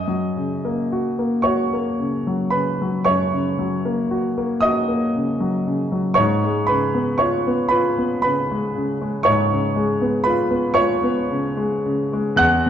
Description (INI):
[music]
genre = classical, romantic nocturne for solo piano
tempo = 34-41 BPM (dotted quarters)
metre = 12/8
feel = rubato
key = unclear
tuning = A4 = 443 Hz
[part]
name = clear grand piano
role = solo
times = 0.0-12.7 s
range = E2 to F#6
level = -18 LUFS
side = equal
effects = none
[sound]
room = wet recital hall reverb, RT60 1.5 s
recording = dark, warm production, nothing above 7.7 kHz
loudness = -18 LUFS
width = side -9 dB against mid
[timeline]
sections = 0.0-12.7 A section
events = none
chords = 0.0 F#; 6.2 C#7/G#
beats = 1.46 3.07 4.63 | 6.18 7.73 9.27 10.76 | 12.41